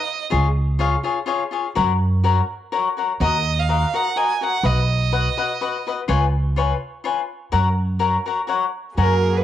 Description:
mexican folk, mariachi; 125 BPM; 3/4; straight; F# major; A4 = 440 Hz
rich violin; melody; 0.0-0.2, 3.2-5.9, 9.0-9.4 s; A#4 to G#5; -23 LUFS; right 7 dB
cavaquinho; accompaniment; 0.3-9.1 s; E#4 to G#5; -22 LUFS; left 6 dB; cassette tape
upright bass; bass; 0.3-9.4 s; B1 to F#2; -19 LUFS; right 1 dB
warm symphonic violin section; sustained chords; 9.0-9.4 s; A#3 to G#4; -25 LUFS; equal; cassette tape
light reverb, small room ambience; home recording on cassette; -18 LUFS; side -11 dB against mid
0.0-9.0 A section
0.3 C#; 1.8 F#; 3.2 D#m; 4.7 B; 6.1 C#7; 7.5 F#
| 0.32 0.80 1.28 | 1.76 2.24 2.73 | 3.21 3.69 4.17 | 4.65 5.13 5.61 | 6.08 6.56 7.04 | 7.52 8.00 8.49 | 8.98

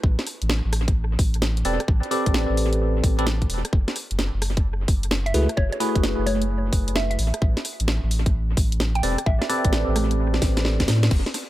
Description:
UK garage, two-step garage; 130 BPM; 4/4; swing 66% on 16ths; A4 = 440 Hz
soft dub sub bass; bass; 0.0-11.2 s; E1 to A2; -23 LUFS; equal
electronic kick drum; drums; 0.0-11.2 s; -21 LUFS; equal
garage drum kit; drums; 0.2-11.5 s; congas, crash cymbal, hi-hat, rim click, snare drum; -27 LUFS; equal; dub echo
bell-like tine electric piano; stabs; 1.7-11.1 s; A3 to D5; -26 LUFS; equal; phaser, low-pass filter, dub echo
mallet-like synth pluck; melody; 5.3-9.5 s; C#5 to G5; -31 LUFS; equal; chorus, phaser, dub echo
little or no reverb; echo-heavy mix; -20 LUFS; side -15 dB against mid
0.0-11.1 A section
filter sweep on tine electric piano 0.0-11.1; drum fill 10.4-11.1
0.0 Am11; 3.7 F#m11; 7.2 Am11
| 0.04 0.50 0.96 1.42 | 1.88 2.34 2.80 3.27 | 3.73 4.19 4.65 5.11 | 5.57 6.04 6.50 6.96 | 7.42 7.88 8.34 8.80 | 9.27 9.73 10.19 10.65 | 11.11

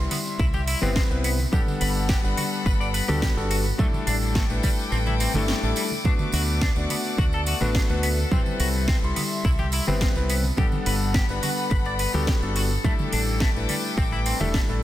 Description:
nu-disco, nu disco; 106 BPM; 4/4; straight; A4 = 441 Hz
warm electric grand piano; accompaniment; 0.0-14.8 s; G3 to C6; -28 LUFS; left 3 dB; vintage 12-bit sampler grit, sidechain pumping, analog delay
rich chamber string section; sustained chords; 0.0-14.8 s; A4 to D6; -33 LUFS; left 3 dB; sidechain pumping
fingered electric bass with an envelope filter; bass; 0.0-14.8 s; E1 to D2; -26 LUFS; equal; tube saturation
electric guitar at the edge of break-up; riff; 0.1-14.6 s; G3 to D5; -32 LUFS; left 3 dB; wide subtle chorus, analog delay
house drum kit; drums; 0.1-14.7 s; hi-hat, snare drum; -31 LUFS; right 1 dB
tambourine and congas; percussion; 0.1-14.8 s; -33 LUFS; right 4 dB
electronic kick drum; drums; 0.4-14.7 s; -23 LUFS; equal
light reverb, digital ambience; dense, heavily limited modern master; -21 LUFS; side -14 dB against mid
0.0-14.8 A section
kick drops out 4.9-6.1
0.0 Cmaj7; 1.5 Gmaj9; 3.8 A7sus4; 6.1 D6; 8.3 Cmaj7; 10.6 Gmaj9; 12.8 A7sus4
0.39 0.96 | 1.52 2.09 2.66 3.22 | 3.79 4.35 4.92 5.49 | 6.05 6.62 7.18 7.75 | 8.32 8.88 9.45 10.02 | 10.58 11.15 11.71 12.28 | 12.85 13.41 13.98 14.54

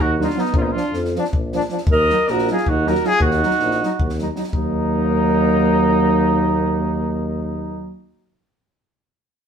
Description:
balkan folk, Balkan brass band; 317 BPM (eighths); 7/8; straight; Eb harmonic minor; A4 = 439 Hz
mellow trumpet; melody; 0.0-7.9 s; Eb4 to Eb5; -23 LUFS; equal
mellow alto saxophone; second line; 0.0-7.9 s; Bb3 to Bb4; -23 LUFS; right 1 dB
mellow tuba; bass; 0.0-7.9 s; Bb1 to F2; -22 LUFS; equal
compact cocktail drum kit; percussion; 0.0-4.7 s; kick drum, snare drum; -24 LUFS; left 1 dB
brilliant trombone; accompaniment; 0.2-7.9 s; D4 to Eb4; -26 LUFS; left 2 dB
mellow euphonium; accompaniment; 0.2-7.9 s; F3 to Gb3; -23 LUFS; right 3 dB
wet studio reverb, RT60 0.7 s; band playing live in one room; -16 LUFS; side -7 dB against mid
0.0-4.5 A section; 4.5-7.2 B section
0.0 Ebm; 0.5 Bb; 1.9 Ebm
0.15 0.35 | 0.54 0.73 0.92 1.11 1.30 1.49 1.68 | 1.87 2.06 2.25 2.44 2.63 2.82 3.01 | 3.20 3.39 3.58 3.77 3.96 4.15 4.34 | 4.53 4.71 4.90 5.09 5.28 5.47 5.66 | 5.84 6.03 6.22 6.41 6.59 6.78 6.97

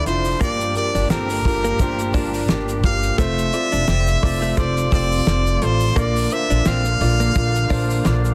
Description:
piano-driven pop; 86 BPM; 4/4; swing 56% on 16ths; F major; A4 = 439 Hz
brilliant trumpet; melody; 0.0-8.3 s; Bb4 to F5; -26 LUFS; equal
clear upright piano; accompaniment; 0.0-8.3 s; G2 to F5; -27 LUFS; equal
warm studio string section; sustained chords; 0.0-8.3 s; C3 to G4; -33 LUFS; equal
upright bass; bass; 0.1-8.3 s; F1 to Bb1; -24 LUFS; equal
damped 70s drum kit; drums; 0.1-8.3 s; hi-hat, kick drum, snare drum; -25 LUFS; equal
tube shaker; percussion; 0.2-8.3 s; -43 LUFS; equal
direct-recorded clean electric guitar; riff; 0.4-8.2 s; A3 to D4; -29 LUFS; equal
little or no reverb; dense, heavily limited modern master; -19 LUFS; mono
0.0-8.3 A section
0.4 Gm7; 3.2 F; 6.0 Bb
| 0.41 1.10 1.80 2.49 | 3.19 3.88 4.58 5.27 | 5.97 6.66 7.36 8.05

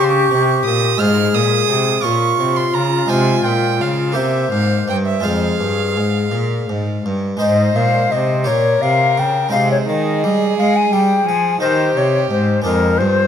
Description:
classical, baroque-style sonata movement with continuo; 57 BPM (dotted quarters); 6/8; straight; F minor, Ab major from 7.4 s; A4 = 440 Hz
hollow concert flute; melody; 0.0-13.3 s; F4 to Ab5; -18 LUFS; left 5 dB
warm violin; second line; 0.0-13.3 s; F4 to F6; -21 LUFS; right 9 dB
harpsichord; accompaniment; 0.0-13.3 s; F2 to Db5; -22 LUFS; left 1 dB
rich cello; bass; 0.0-13.3 s; F2 to Ab3; -19 LUFS; right 1 dB
moderate recital hall reverb, RT60 1.6 s; close, detailed microphones; -14 LUFS; side -8 dB against mid
0.0-7.4 A section; 7.4-13.3 A section
0.0 Gdim; 1.0 Fm/Ab; 2.0 Bbmadd9; 3.1 Fm; 4.2 C5; 5.2 Fm; 7.4 Ab; 8.5 Gdim/Bb; 9.5 Ab/C; 11.6 Eb; 12.6 Ddim/F
| 1.01 2.04 | 3.10 4.16 | 5.24 6.33 | 7.41 8.47 | 9.52 10.57 | 11.61 12.64

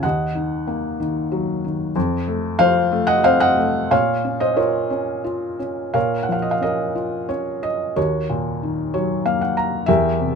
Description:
classical, lyrical solo piano; 92 BPM; 3/4; rubato; Bb minor; A4 = 441 Hz
felt-muted upright piano; solo; 0.0-10.4 s; Eb2 to Bb5; -18 LUFS; equal
light reverb; close, detailed microphones; -18 LUFS; side -6 dB against mid
0.0-6.0 A section; 6.0-10.4 A section
felt piano fill 8.6-9.9
0.0 Ebm; 2.0 F; 3.9 Bbm; 8.0 Ebm7
| 0.04 0.69 1.33 | 1.96 2.60 3.25 | 3.92 4.58 5.26 | 5.96 6.64 7.30 | 7.97 8.62 9.25 | 9.88

